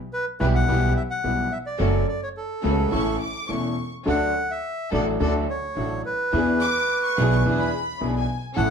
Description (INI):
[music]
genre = tango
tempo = 107 BPM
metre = 4/4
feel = rubato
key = unclear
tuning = A4 = 440 Hz
[part]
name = bandoneon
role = melody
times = 0.1-8.7 s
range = A4 to F#5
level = -26 LUFS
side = right 1 dB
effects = none
[part]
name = clear concert grand piano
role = accompaniment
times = 0.4-8.7 s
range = E1 to A4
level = -25 LUFS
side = left 1 dB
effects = none
[part]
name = rich chamber string section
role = stabs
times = 0.4-8.7 s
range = B3 to A4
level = -31 LUFS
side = equal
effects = none
[part]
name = upright bass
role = bass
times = 0.4-8.7 s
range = E1 to E2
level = -26 LUFS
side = right 2 dB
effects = none
[part]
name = warm studio violin section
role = second line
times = 2.9-8.4 s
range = G#5 to D6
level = -30 LUFS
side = left 2 dB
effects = none
[sound]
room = wet club reverb, RT60 0.8 s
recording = heard from further back in the room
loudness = -21 LUFS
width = side -7 dB against mid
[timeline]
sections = 0.0-8.7 A section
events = none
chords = 0.0 Em/B; 1.8 F#m; 2.9 A; 4.1 D; 6.3 E7